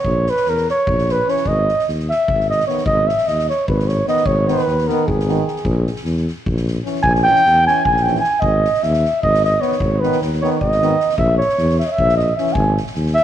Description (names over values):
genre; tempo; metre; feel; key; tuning
balkan folk, Balkan brass band; 303 BPM (eighths); 7/8; straight; G# harmonic minor; A4 = 440 Hz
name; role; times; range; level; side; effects
dark flugelhorn; melody; 0.0-13.2 s; G#4 to G#5; -16 LUFS; right 1 dB; none
soft-mallet drum kit; percussion; 0.0-13.2 s; kick drum, snare drum; -26 LUFS; left 1 dB; none
dark tuba; bass; 0.1-13.2 s; G#1 to E2; -20 LUFS; left 1 dB; none
clear trombone; accompaniment; 1.3-12.5 s; B3 to C#4; -26 LUFS; left 12 dB; none
warm euphonium; accompaniment; 1.3-12.5 s; D#3 to E3; -26 LUFS; right 9 dB; none
room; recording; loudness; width
moderate echo chamber reverb, RT60 1.5 s, studio reverb; 1960s-style stereo with parts hard left and right; -14 LUFS; side -10 dB against mid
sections
0.0-13.2 A section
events
speeding up 0.0-13.2; flugelhorn solo 0.0-13.2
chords
0.1 A#dim; 1.5 G#m; 5.7 A#dim; 8.4 G#m; 11.2 A#dim; 12.6 G#5